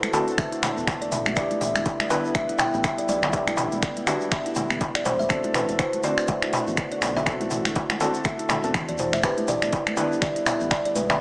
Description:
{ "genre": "afro house", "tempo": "122 BPM", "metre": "4/4", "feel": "swing 58% on 16ths", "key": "E minor", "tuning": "A4 = 440 Hz", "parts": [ { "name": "kalimba", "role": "melody", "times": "0.0-11.2 s", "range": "A4 to G5", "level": "-28 LUFS", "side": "equal", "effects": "tape echo" }, { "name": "warm analog pad", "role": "sustained chords", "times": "0.0-11.2 s", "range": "D3 to F#4", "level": "-34 LUFS", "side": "equal", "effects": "chorus, sidechain pumping" }, { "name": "felt-muted upright piano", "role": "stabs", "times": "0.0-11.2 s", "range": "B3 to C5", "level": "-31 LUFS", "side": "left 1 dB", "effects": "sidechain pumping, tape echo" }, { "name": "afro-pop drum kit", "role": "drums", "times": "0.0-11.2 s", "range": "finger snaps, hi-hat, toms", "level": "-27 LUFS", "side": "equal", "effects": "none" }, { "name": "congas", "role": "percussion", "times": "0.0-11.2 s", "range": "none", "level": "-35 LUFS", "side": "right 1 dB", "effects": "none" }, { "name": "tube shaker", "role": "percussion", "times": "0.0-11.2 s", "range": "none", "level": "-39 LUFS", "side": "left 1 dB", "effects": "none" }, { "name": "kalimba", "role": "arpeggios", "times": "0.1-11.2 s", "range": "B3 to E5", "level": "-30 LUFS", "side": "equal", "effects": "sidechain pumping, tape echo" }, { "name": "darbuka", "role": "percussion", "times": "0.1-11.2 s", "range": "none", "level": "-30 LUFS", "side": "equal", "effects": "none" }, { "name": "electronic kick drum", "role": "drums", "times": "0.4-10.8 s", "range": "none", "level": "-29 LUFS", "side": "equal", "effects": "none" }, { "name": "round analog bass", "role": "bass", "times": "0.8-11.2 s", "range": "E1 to E2", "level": "-35 LUFS", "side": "equal", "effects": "sidechain pumping" } ], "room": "light reverb, studio reverb", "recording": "small speaker sound", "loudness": "-21 LUFS", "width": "side -24 dB against mid", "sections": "0.0-11.2 A section", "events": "drum fill 8.5-9.2", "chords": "0.0 D7; 1.4 Em7; 5.3 D7/E; 9.2 Em7" }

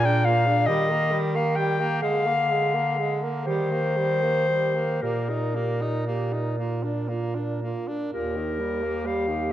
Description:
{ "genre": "classical, lyrical piece for single-reed quartet", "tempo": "37-48 BPM (dotted quarters)", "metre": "6/8", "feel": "rubato", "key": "Eb major", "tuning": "A4 = 440 Hz", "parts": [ { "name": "warm clarinet", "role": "melody", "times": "0.0-9.5 s", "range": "Bb4 to G5", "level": "-25 LUFS", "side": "left 3 dB", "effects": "none" }, { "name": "mellow alto saxophone", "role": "second line", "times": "0.0-9.5 s", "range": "F4 to Bb4", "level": "-32 LUFS", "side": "right 7 dB", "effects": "none" }, { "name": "clear tenor saxophone", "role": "accompaniment", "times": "0.0-9.5 s", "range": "Bb2 to Eb4", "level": "-30 LUFS", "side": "equal", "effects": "none" }, { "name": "clear bass clarinet", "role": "bass", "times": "0.0-9.5 s", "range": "Eb2 to Eb3", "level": "-27 LUFS", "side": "right 1 dB", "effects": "none" } ], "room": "wet recital hall reverb, RT60 1.6 s", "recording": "dark, warm production", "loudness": "-22 LUFS", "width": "side -12 dB against mid", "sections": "0.0-8.1 A section; 8.1-9.5 B section", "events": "none", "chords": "0.0 Bb7; 0.7 Eb; 2.0 Bb7/D; 3.5 Eb; 5.0 Eb/Bb; 6.6 Bb; 8.1 Eb" }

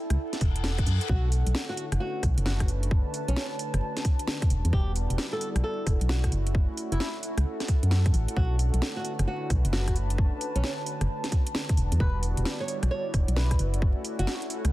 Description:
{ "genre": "UK garage, two-step garage", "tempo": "132 BPM", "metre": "4/4", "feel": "swing 64% on 16ths", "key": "B minor", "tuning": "A4 = 441 Hz", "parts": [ { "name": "warbly tape-like pad", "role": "texture", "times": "0.0-14.7 s", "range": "D3 to A5", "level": "-36 LUFS", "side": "equal", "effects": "chorus, built-in reverb, sidechain pumping" }, { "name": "organ-like FM bass", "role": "bass", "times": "0.1-14.7 s", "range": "E1 to F#2", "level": "-25 LUFS", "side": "equal", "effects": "sidechain pumping" }, { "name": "house drum kit", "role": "drums", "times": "0.1-14.7 s", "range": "hi-hat, rim click, snare drum", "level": "-33 LUFS", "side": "equal", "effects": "none" }, { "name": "reverse cymbal", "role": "sound effects", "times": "0.4-1.1 s", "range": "none", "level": "-39 LUFS", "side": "left 6 dB", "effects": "none" }, { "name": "electronic kick drum", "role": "drums", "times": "0.4-13.9 s", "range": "none", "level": "-25 LUFS", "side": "equal", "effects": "none" }, { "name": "flamenco guitar", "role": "melody", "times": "1.1-14.3 s", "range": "C#4 to C#5", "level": "-36 LUFS", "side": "equal", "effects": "dub echo" }, { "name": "warm analog pad", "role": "sustained chords", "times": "1.1-14.7 s", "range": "G3 to F#4", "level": "-40 LUFS", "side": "equal", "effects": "chorus, tremolo, sidechain pumping" } ], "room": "digital ambience", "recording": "dense, heavily limited modern master, vinyl crackle", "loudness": "-24 LUFS", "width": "side -16 dB against mid", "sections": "0.0-14.7 A section", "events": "reverse cymbal 0.4-1.1", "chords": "0.0 F#m7; 1.1 Bm7; 4.5 Em7; 6.3 F#m7; 8.4 Bm7; 11.8 Em7; 13.6 F#m7" }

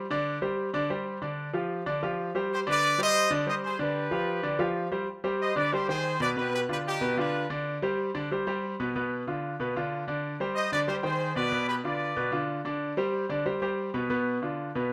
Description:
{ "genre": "latin", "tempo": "186 BPM", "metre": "4/4", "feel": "straight", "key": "C harmonic minor", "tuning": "A4 = 438 Hz", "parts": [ { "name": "clear concert grand piano", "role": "accompaniment", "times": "0.0-14.9 s", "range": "B2 to G5", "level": "-31 LUFS", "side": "equal", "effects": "none" }, { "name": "bright trumpet section", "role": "melody", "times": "2.5-7.5, 10.6-12.5 s", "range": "Eb4 to Eb5", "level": "-30 LUFS", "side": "equal", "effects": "none" } ], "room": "moderate large studio reverb, RT60 1.2 s", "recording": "none", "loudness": "-29 LUFS", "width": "mono", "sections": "0.0-5.1 A section; 5.1-14.9 B section", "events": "none", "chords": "0.0 Csus2; 1.2 G5; 2.5 Cmadd9; 3.8 G7; 5.1 Cmadd9; 6.4 G7; 7.7 Csus2; 9.0 Bdim; 10.2 Cmadd9; 11.5 G7 (rootless); 12.8 Csus2; 14.1 Bdim" }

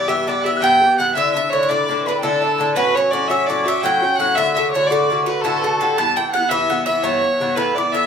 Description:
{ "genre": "celtic folk, Celtic slip jig", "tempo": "112 BPM (dotted quarters)", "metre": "9/8", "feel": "straight", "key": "E dorian", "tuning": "A4 = 437 Hz", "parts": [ { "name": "warm fiddle", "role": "melody", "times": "0.0-8.1 s", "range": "G4 to A5", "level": "-19 LUFS", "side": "equal", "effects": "none" }, { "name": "bowl-back mandolin", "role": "second line", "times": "0.0-8.1 s", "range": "A4 to A5", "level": "-24 LUFS", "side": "right 4 dB", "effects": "none" }, { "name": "breathy mid whistle", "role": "second line", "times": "0.0-8.1 s", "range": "G5 to A6", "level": "-24 LUFS", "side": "left 2 dB", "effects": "none" }, { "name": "Irish bouzouki", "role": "accompaniment", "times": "0.0-8.1 s", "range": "G2 to G4", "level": "-20 LUFS", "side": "left 2 dB", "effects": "none" } ], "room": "wet small room reverb, RT60 0.5 s", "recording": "heard from further back in the room", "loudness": "-15 LUFS", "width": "side -7 dB against mid", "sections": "0.0-8.1 A section", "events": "none", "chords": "0.0 Em; 1.2 Asus4; 2.8 F#m; 4.4 D; 6.0 Em" }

